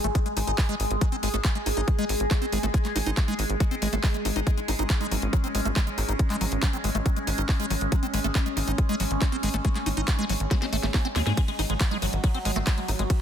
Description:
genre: psychedelic trance.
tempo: 139 BPM.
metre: 4/4.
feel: straight.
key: unclear.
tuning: A4 = 440 Hz.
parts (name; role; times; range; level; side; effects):
overtone-sweeping drone; sustained chords; 0.0-13.2 s; F#3 to G#4; -31 LUFS; equal; chorus, built-in reverb, phaser, sidechain pumping.
liquid acid bass; riff; 0.0-13.0 s; F#3 to D#4; -31 LUFS; moving between left 4 dB and right 2 dB; phaser, auto-pan, sidechain pumping, dub echo.
tight sequencer bass; bass; 0.0-13.1 s; G#1 to G#2; -28 LUFS; equal; none.
drum and bass drum kit; drums; 0.0-13.2 s; handclaps, hi-hat, ride cymbal, snare drum; -32 LUFS; left 1 dB; overdrive.
electronic kick drum; drums; 0.1-13.2 s; none; -24 LUFS; equal; overdrive.
metallic wobble bass; second line; 12.6-12.7 s; B#3; -42 LUFS; left 2 dB; none.
room: light reverb.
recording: dense, heavily limited modern master.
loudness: -23 LUFS.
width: side -9 dB against mid.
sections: 0.0-13.2 A section.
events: drum fill 10.5-11.4.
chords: 0.0 G#5.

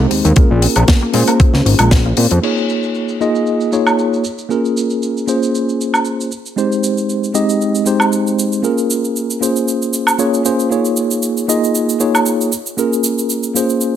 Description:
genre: nu-disco, nu disco.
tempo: 116 BPM.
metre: 4/4.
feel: swing 54% on 16ths.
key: Bb dorian.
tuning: A4 = 441 Hz.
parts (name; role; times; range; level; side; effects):
mellow tine electric piano; accompaniment; 0.0-14.0 s; Ab3 to Eb5; -15 LUFS; equal; medium stereo tremolo, dub echo.
wide unison pluck; arpeggios; 0.0-2.4 s; Ab3 to F4; -21 LUFS; left 3 dB; sidechain pumping, ping-pong delay.
fat analog bass; bass; 0.0-2.4 s; Ab1 to Bb2; -13 LUFS; equal; none.
tight funk drum kit; drums; 0.1-13.9 s; cabasa, crash cymbal, hi-hat, snare drum, woodblock; -19 LUFS; equal; low-pass filter on hats, small room ambience, low-pass filter on cymbals, low-pass filter on snare, low-pass filter on perc, low-pass filter on room.
electronic kick drum; drums; 0.4-2.0 s; none; -10 LUFS; equal; overdrive, small room ambience.
room: light reverb, studio reverb.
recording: none.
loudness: -13 LUFS.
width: side -10 dB against mid.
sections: 0.0-2.4 A section; 2.4-14.0 B section.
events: none.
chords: 0.4 Bbm9; 2.4 Eb9sus4; 4.2 Bbm9; 6.3 Abmaj7; 8.6 Bbm9; 10.7 Eb9sus4; 12.5 Bbm9.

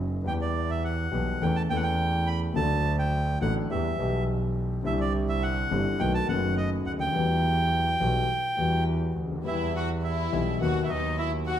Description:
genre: tango.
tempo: 104 BPM.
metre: 4/4.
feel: rubato.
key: E minor.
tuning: A4 = 440 Hz.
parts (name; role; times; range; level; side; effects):
warm grand piano; accompaniment; 0.0-11.6 s; F#1 to A4; -29 LUFS; left 3 dB; none.
clear double bass; bass; 0.0-11.6 s; F#1 to E2; -29 LUFS; right 2 dB; none.
bandoneon; melody; 0.3-11.6 s; D5 to B5; -30 LUFS; right 2 dB; none.
warm studio violin section; second line; 9.5-11.6 s; D#4 to F#4; -33 LUFS; left 3 dB; none.
room: wet large studio reverb, RT60 1.2 s.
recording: none.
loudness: -24 LUFS.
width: side -10 dB against mid.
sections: 0.0-11.6 A section.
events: none.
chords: 0.3 Em; 1.4 A/E; 2.6 D; 3.7 Em; 4.8 Cadd9; 6.0 B7; 7.1 Emadd9; 9.5 Em; 10.6 B/D#.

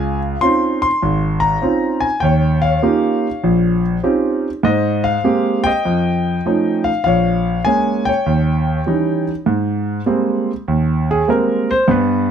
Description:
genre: solo jazz.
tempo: 99 BPM.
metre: 4/4.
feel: swing 69% on 8ths.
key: Ab major.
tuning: A4 = 440 Hz.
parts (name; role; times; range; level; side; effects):
warm concert grand piano; solo; 0.0-12.3 s; Ab1 to C6; -14 LUFS; right 1 dB; none.
room: moderate studio reverb, RT60 0.7 s.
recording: none.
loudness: -14 LUFS.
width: side -8 dB against mid.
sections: 0.0-9.5 A section; 9.5-12.3 B section.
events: grand piano solo 9.5-12.3.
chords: 0.0 Dbmaj9; 2.2 Eb13; 4.6 Abmaj9; 5.8 F7b13; 7.1 Bbm7; 8.3 Eb7b9; 9.5 Abmaj9.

